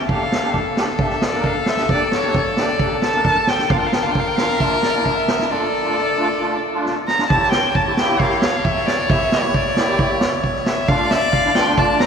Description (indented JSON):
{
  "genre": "klezmer",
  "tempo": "133 BPM",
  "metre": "4/4",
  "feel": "straight",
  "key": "unclear",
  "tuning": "A4 = 439 Hz",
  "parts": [
    { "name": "dark violin", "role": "melody", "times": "0.0-12.1 s", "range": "C#5 to Bb5", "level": "-21 LUFS", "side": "equal", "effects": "none" },
    { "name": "musette accordion", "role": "accompaniment", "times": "0.0-12.0 s", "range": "A3 to Bb4", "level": "-23 LUFS", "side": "right 1 dB", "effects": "none" },
    { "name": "rich violin", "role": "second line", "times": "0.1-12.1 s", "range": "A4 to D5", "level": "-22 LUFS", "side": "left 3 dB", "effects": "none" },
    { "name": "street-band drum kit", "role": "drums", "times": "0.1-12.1 s", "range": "kick drum, snare drum", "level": "-21 LUFS", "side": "right 2 dB", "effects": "none" }
  ],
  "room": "wet cathedral reverb, RT60 6.7 s",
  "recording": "recorded in a church or concert hall",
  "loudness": "-16 LUFS",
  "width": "side -7 dB against mid",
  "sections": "0.0-7.3 A section; 7.3-12.1 B section",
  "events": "drum fill 6.9-7.3",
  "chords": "0.1 Gm; 3.7 Bb; 5.5 Dm; 7.3 Edim; 10.9 Dm"
}